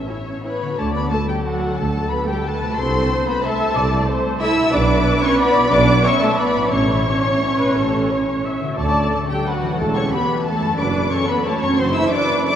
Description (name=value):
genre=classical, orchestral ballroom waltz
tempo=161-196 BPM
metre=3/4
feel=rubato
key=D major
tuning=A4 = 436 Hz
part: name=muted studio violin section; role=melody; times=0.0-12.6 s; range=E5 to E6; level=-24 LUFS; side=left 3 dB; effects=none
part: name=muted symphonic violin section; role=second line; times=0.0-12.6 s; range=F#4 to E5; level=-24 LUFS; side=left 2 dB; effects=none
part: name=concert harp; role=arpeggios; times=0.0-12.6 s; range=F#2 to E5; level=-27 LUFS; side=left 3 dB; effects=none
part: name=muted symphonic cello section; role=bass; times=0.0-12.6 s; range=F#3 to E4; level=-22 LUFS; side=right 2 dB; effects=none
part: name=muted symphonic double bass section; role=bass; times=0.0-12.1 s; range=A1 to F#2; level=-26 LUFS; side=right 2 dB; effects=none
part: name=muted symphonic viola section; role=accompaniment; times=0.1-12.6 s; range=C#4 to E5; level=-24 LUFS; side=right 1 dB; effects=none
part: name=dark tuba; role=bass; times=0.8-12.1 s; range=E1 to D2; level=-26 LUFS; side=right 1 dB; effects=none
room=wet cathedral reverb, RT60 5.9 s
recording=recorded in a church or concert hall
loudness=-16 LUFS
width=side -9 dB against mid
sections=0.8-12.6 A section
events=none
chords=0.0 A; 0.8 D; 2.8 D7/C; 4.7 G/B; 5.7 E7/B; 6.7 A; 8.8 D; 9.8 A7/E; 10.8 D/F#; 11.8 D7/F#